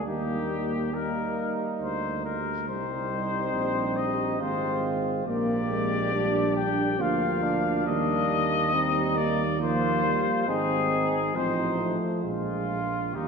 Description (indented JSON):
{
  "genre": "classical, brass quintet",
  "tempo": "69 BPM",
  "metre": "3/4",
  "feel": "rubato",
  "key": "Eb major",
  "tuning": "A4 = 439 Hz",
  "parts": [
    { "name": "warm trumpet", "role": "melody", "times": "0.0-13.3 s", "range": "Eb4 to G5", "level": "-29 LUFS", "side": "left 6 dB", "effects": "none" },
    { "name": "warm flugelhorn", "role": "second line", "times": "0.0-13.3 s", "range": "D4 to G4", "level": "-32 LUFS", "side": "right 6 dB", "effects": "none" },
    { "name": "dark trombone", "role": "accompaniment", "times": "0.0-13.3 s", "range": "Eb3 to Bb3", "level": "-32 LUFS", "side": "right 2 dB", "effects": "none" },
    { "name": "warm French horn", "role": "accompaniment", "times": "0.0-13.3 s", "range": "G3 to D4", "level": "-31 LUFS", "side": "left 3 dB", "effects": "none" },
    { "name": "mellow tuba", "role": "bass", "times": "0.0-13.3 s", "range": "Ab1 to Eb2", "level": "-32 LUFS", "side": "right 4 dB", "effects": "none" }
  ],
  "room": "wet church reverb, RT60 2.5 s",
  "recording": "none",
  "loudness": "-24 LUFS",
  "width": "side -5 dB against mid",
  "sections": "0.0-13.3 A section",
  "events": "none",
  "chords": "0.1 Eb; 2.7 Cm; 4.4 Fm/Ab; 5.3 Bb7; 7.9 Eb; 10.5 Ab; 11.3 Adim; 12.2 Bb5"
}